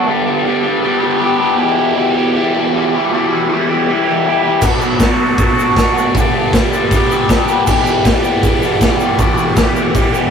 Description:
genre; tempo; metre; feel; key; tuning
garage rock duo or trio; 158 BPM; 4/4; straight; E minor; A4 = 440 Hz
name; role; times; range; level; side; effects
raw garage guitar; riff; 0.0-10.3 s; E2 to G4; -13 LUFS; equal; overdrive, phaser
raw garage drum kit; drums; 4.6-10.0 s; crash cymbal, hi-hat, kick drum, snare drum; -15 LUFS; equal; none
egg shaker; percussion; 4.6-10.2 s; none; -33 LUFS; right 4 dB; none
room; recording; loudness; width
moderate booth ambience, RT60 0.2 s; rough rehearsal-room recording, warm saturation; -11 LUFS; side -7 dB against mid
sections
0.0-10.3 A section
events
none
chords
0.1 G; 1.6 Em; 4.6 Bm; 6.1 G; 7.7 Em

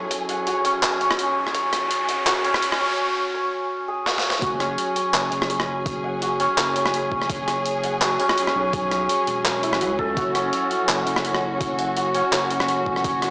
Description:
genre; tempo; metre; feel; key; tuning
half-time drum and bass; 167 BPM; 4/4; swing 54% on 16ths, half-time; F# minor; A4 = 439 Hz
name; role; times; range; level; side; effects
warm studio string section; sustained chords; 0.0-13.3 s; F#3 to G#4; -27 LUFS; equal; sidechain pumping
santur; arpeggios; 0.0-13.3 s; C#4 to F#5; -22 LUFS; equal; vintage 12-bit sampler grit, analog delay
riser; sound effects; 0.3-3.0 s; none; -30 LUFS; equal; none
flickering grainy texture; texture; 0.0-3.0 s; G#5; -35 LUFS; equal; none
boom bap sampler-style drum kit; drums; 0.1-13.3 s; handclaps, hi-hat, rim click, snare drum; -25 LUFS; equal; none
electronic kick drum; drums; 0.1-13.1 s; none; -33 LUFS; equal; high-pass filter on kick, high-pass filter on room
saturated sub bass; bass; 4.4-13.3 s; E1 to C#2; -33 LUFS; equal; none
room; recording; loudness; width
wet echo chamber reverb, RT60 1.5 s; dry, gritty hardware recording, cassette tape, high-pass filter, small speaker sound; -20 LUFS; side -27 dB against mid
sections
0.0-4.4 A section; 4.4-13.3 B section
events
build-up 0.0-4.4; riser 0.3-3.0; break 3.0-4.4; drum fill 4.1-4.4; drop 4.4-13.3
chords
0.0 F#madd9

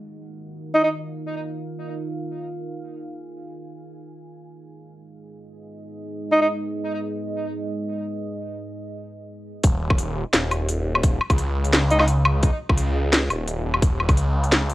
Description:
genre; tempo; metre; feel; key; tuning
half-time drum and bass; 172 BPM; 4/4; half-time; unclear; A4 = 441 Hz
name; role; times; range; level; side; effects
deep dark ambient pad; sustained chords; 0.0-9.6 s; Ab3 to Ab5; -32 LUFS; right 2 dB; chorus, built-in reverb, sidechain pumping, cassette tape
clear alto saxophone; melody; 0.7-0.9, 6.3-6.5, 11.9-12.0 s; Eb4; -21 LUFS; equal; cassette tape, tape echo
phased detuned saw bass; bass; 9.6-14.7 s; Eb1 to Db2; -22 LUFS; equal; phaser
drum and bass drum kit; drums; 9.6-14.7 s; hi-hat, snare drum, woodblock; -21 LUFS; left 1 dB; cassette tape
electronic kick drum; drums; 9.6-14.2 s; none; -19 LUFS; equal; cassette tape
room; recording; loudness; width
light reverb; home recording on cassette; -20 LUFS; side -17 dB against mid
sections
0.0-9.6 A section; 9.6-14.7 B section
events
drop 9.6-14.7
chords
0.0 Ebmadd9; 4.1 Abm; 9.6 N.C.

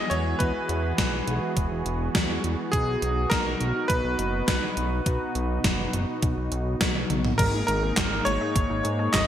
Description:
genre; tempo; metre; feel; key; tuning
synthwave; 103 BPM; 4/4; straight; B major; A4 = 441 Hz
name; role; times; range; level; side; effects
bright electric grand piano; melody; 0.0-9.3 s; G#4 to D#5; -29 LUFS; equal; digital delay
warm analog pad; sustained chords; 0.0-9.3 s; E3 to G#4; -32 LUFS; right 1 dB; lush chorus, sidechain pumping
analog synth brass; stabs; 0.0-9.3 s; G#2 to G#4; -33 LUFS; left 1 dB; chorus, cassette tape
fat analog bass; bass; 0.1-9.3 s; E1 to G#2; -29 LUFS; equal; sidechain pumping
gated 80s digital drum machine; drums; 0.1-9.3 s; crash cymbal, handclaps, hi-hat, snare drum, toms; -28 LUFS; equal; gated reverb, gated reverb snare, overdrive
electronic kick drum; drums; 0.4-9.3 s; none; -27 LUFS; equal; overdrive
analog pluck; arpeggios; 7.4-9.2 s; G#3 to D#5; -36 LUFS; right 3 dB; none
room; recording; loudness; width
moderate plate reverb, RT60 2.4 s; bright 1980s-style digital production; -23 LUFS; side -10 dB against mid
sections
0.0-7.4 A section; 7.4-9.3 B section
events
drum fill 6.8-7.4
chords
0.0 Eadd9; 2.7 B; 7.4 G#sus2

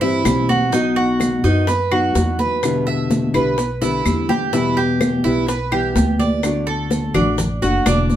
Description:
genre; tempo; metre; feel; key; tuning
latin, Cuban son and guajira; 126 BPM; 4/4; straight; E minor; A4 = 440 Hz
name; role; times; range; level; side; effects
nylon-string guitar; accompaniment; 0.0-8.2 s; B2 to F#4; -20 LUFS; left 2 dB; none
Cuban tres; arpeggios; 0.0-8.2 s; D4 to E5; -21 LUFS; right 4 dB; none
upright bass; bass; 0.0-8.2 s; E1 to G2; -23 LUFS; equal; none
bongos; percussion; 0.0-8.2 s; none; -28 LUFS; left 6 dB; none
congas; percussion; 0.0-8.2 s; none; -23 LUFS; equal; none
claves; percussion; 0.3-8.1 s; none; -28 LUFS; left 4 dB; none
maracas; percussion; 0.3-8.2 s; none; -33 LUFS; right 4 dB; none
room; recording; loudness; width
moderate studio ambience, RT60 0.5 s; band playing live in one room; -16 LUFS; side -11 dB against mid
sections
0.0-4.5 A section; 4.5-8.2 B section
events
drum fill 3.8-4.5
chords
0.0 C; 0.7 B; 2.6 Em7; 6.4 D

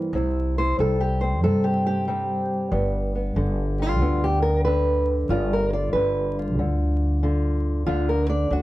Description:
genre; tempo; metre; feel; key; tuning
acoustic country blues, solo or duo; 93 BPM; 4/4; swing 67% on 8ths; G mixolydian; A4 = 439 Hz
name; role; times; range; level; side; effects
fingerpicked old ladder-braced acoustic guitar; melody; 0.0-8.6 s; G2 to D5; -23 LUFS; equal; none
upright bass; bass; 0.0-8.6 s; G1 to G2; -24 LUFS; equal; none
room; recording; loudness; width
light reverb; dark, warm production, vinyl crackle; -20 LUFS; side -16 dB against mid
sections
0.0-8.6 A section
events
steel-string acoustic guitar solo 0.0-8.6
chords
0.0 C; 2.7 G7; 7.9 D5

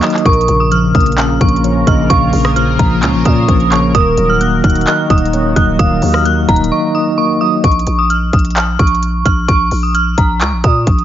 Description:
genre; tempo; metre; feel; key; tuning
hip hop, trap; 130 BPM; 4/4; half-time; Bb minor; A4 = 439 Hz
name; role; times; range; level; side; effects
dark detuned synth bell; melody; 0.0-11.0 s; Bb5 to Gb6; -16 LUFS; right 1 dB; chorus, phaser, low-pass filter, digital delay
soft octave-layered synth lead; second line; 0.0-7.6 s; Bb4 to F5; -22 LUFS; right 2 dB; chorus, digital delay
mellow tine electric piano; accompaniment; 0.0-7.7 s; Bb2 to Eb5; -15 LUFS; left 1 dB; fast stereo tremolo, low-pass filter
trap drum kit; drums; 0.0-11.0 s; handclaps, hi-hat, kick drum, rim click; -14 LUFS; equal; vintage 12-bit sampler grit
sweeping resonant pad; sustained chords; 0.3-7.6 s; Db3 to Bb4; -24 LUFS; left 1 dB; chorus
growling 808-style bass; bass; 0.3-11.0 s; Eb1 to Bb2; -16 LUFS; equal; none
room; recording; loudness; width
light reverb, digital ambience; nothing above 7.5 kHz; -10 LUFS; side -11 dB against mid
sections
0.0-7.6 A section; 7.6-11.0 B section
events
drums muted 6.7-7.6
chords
0.3 Bbm; 3.9 Ebm; 7.6 Bbm

